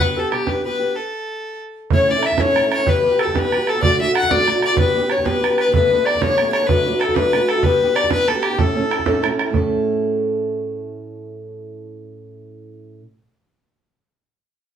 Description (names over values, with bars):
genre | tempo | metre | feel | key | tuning
celtic folk, Celtic jig | 126 BPM (dotted quarters) | 6/8 | straight | A mixolydian | A4 = 438 Hz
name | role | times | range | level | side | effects
warm fiddle | melody | 0.0-9.2 s | G4 to F#5 | -19 LUFS | left 3 dB | none
bright reedy wooden flute | second line | 0.0-9.2 s | G4 to F#5 | -23 LUFS | left 3 dB | none
fingerpicked acoustic archtop guitar | accompaniment | 0.0-13.1 s | D2 to A4 | -22 LUFS | right 3 dB | none
bodhran | percussion | 0.2-9.7 s | none | -21 LUFS | right 3 dB | none
room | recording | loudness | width
wet studio reverb, RT60 0.6 s | band playing live in one room | -16 LUFS | side -8 dB against mid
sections
0.0-1.9 A section; 1.9-9.5 B section; 9.5-11.4 C section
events
stop 1.0-1.9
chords
0.0 G; 1.0 N.C.; 1.9 A; 2.9 Em; 3.8 D; 4.8 G; 5.7 Gadd9; 6.7 D/F#; 7.6 G; 8.6 A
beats
| 0.00 0.48 | 0.96 1.44 | 1.91 2.39 | 2.87 3.35 | 3.82 4.30 | 4.78 5.25 | 5.73 6.21 | 6.68 7.16 | 7.63 8.11 | 8.59 9.06 | 9.54 10.02 | 10.49 10.97